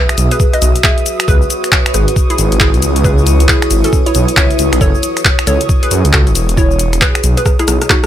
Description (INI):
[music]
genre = UK garage, two-step garage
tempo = 136 BPM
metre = 4/4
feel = swing 62% on 16ths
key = C# minor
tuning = A4 = 439 Hz
[part]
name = hollow square pluck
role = melody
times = 0.0-8.1 s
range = C#4 to E5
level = -18 LUFS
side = right 1 dB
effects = chorus, tape echo
[part]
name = airy breathy pad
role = sustained chords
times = 0.0-8.1 s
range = C#5 to D#6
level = -24 LUFS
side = equal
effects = chorus, phaser, sidechain pumping
[part]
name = deep dark ambient pad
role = texture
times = 0.1-8.1 s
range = E4 to D#6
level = -20 LUFS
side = equal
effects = chorus, built-in reverb, sidechain pumping
[part]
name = punchy analog drum machine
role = drums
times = 0.1-8.1 s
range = cabasa, finger snaps, handclaps, hi-hat, rim click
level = -15 LUFS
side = left 1 dB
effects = overdrive
[part]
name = dark detuned saw bass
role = bass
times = 0.2-7.8 s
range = E1 to F#2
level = -13 LUFS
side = equal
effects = sidechain pumping
[part]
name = electronic kick drum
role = drums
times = 0.4-8.0 s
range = none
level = -13 LUFS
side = equal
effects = none
[sound]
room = little or no reverb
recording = none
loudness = -9 LUFS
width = side -11 dB against mid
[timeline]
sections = 0.0-8.1 A section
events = drum fill 7.5-8.1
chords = 0.0 Emaj9; 1.3 C#m9; 4.8 F#m9; 6.6 Emaj9